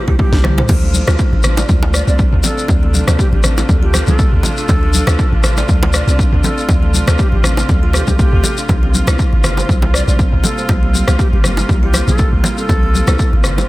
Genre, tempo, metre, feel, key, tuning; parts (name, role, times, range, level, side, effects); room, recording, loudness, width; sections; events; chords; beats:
afro house; 120 BPM; 4/4; swing 55% on 16ths; D minor; A4 = 440 Hz
bright reedy bass bansuri; melody; 0.0-13.3 s; G4 to D5; -25 LUFS; equal; tape echo
dark studio string section; sustained chords; 0.0-13.7 s; C3 to F4; -24 LUFS; right 1 dB; sidechain pumping
kalimba; arpeggios; 0.0-13.7 s; G3 to D5; -24 LUFS; equal; sidechain pumping, tape echo
warm 808-style bass; bass; 0.1-13.6 s; G1 to D2; -15 LUFS; equal; sidechain pumping
electronic kick drum; drums; 0.1-13.3 s; -15 LUFS; equal; overdrive
house drum kit; drums; 0.2-13.5 s; crash cymbal, rim click, snare drum, toms; -22 LUFS; left 1 dB; overdrive
bongos; percussion; 0.4-13.7 s; -23 LUFS; right 1 dB; analog delay
congas; percussion; 0.7-13.7 s; -24 LUFS; left 2 dB
shekere; percussion; 0.7-13.7 s; -23 LUFS; left 4 dB
studio reverb; echo-heavy mix; -11 LUFS; side -18 dB against mid
0.0-13.7 A section
drum fill 0.2-0.7
0.0 C7sus4; 0.7 Dm7; 8.7 C7sus4
0.19 | 0.69 1.19 1.69 2.19 | 2.69 3.19 3.69 4.19 | 4.69 5.19 5.69 6.19 | 6.69 7.19 7.69 8.19 | 8.69 9.19 9.69 10.19 | 10.69 11.19 11.69 12.19 | 12.69 13.19